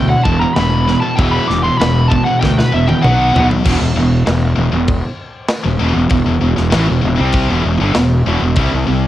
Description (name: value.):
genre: heavy metal.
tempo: 98 BPM.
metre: 4/4.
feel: straight.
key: E minor.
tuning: A4 = 439 Hz.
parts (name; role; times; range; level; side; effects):
smooth overdriven lead guitar; melody; 0.0-3.5 s; B4 to D6; -17 LUFS; equal; cassette tape, analog delay.
distorted electric guitar; riff; 0.0-9.1 s; E2 to C4; -20 LUFS; right 6 dB; distortion.
scooped high-gain guitar; riff; 0.0-9.1 s; E2 to C4; -19 LUFS; left 5 dB; distortion.
thick fuzz guitar; riff; 0.0-9.1 s; E2 to C4; -23 LUFS; right 1 dB; distortion.
fuzz fingered electric bass; bass; 0.0-9.1 s; E1 to D2; -16 LUFS; equal; overdrive.
tight metal drum kit; drums; 0.3-8.7 s; crash cymbal, kick drum, snare drum, toms; -19 LUFS; equal; none.
room: little or no reverb.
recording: home recording on cassette.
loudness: -11 LUFS.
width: side -13 dB against mid.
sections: 0.0-3.6 A section; 3.6-9.1 B section.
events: lead electric guitar solo 0.0-3.6; drum fill 2.4-3.6.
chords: 0.0 E5; 3.0 B5; 3.6 Em; 8.6 C5.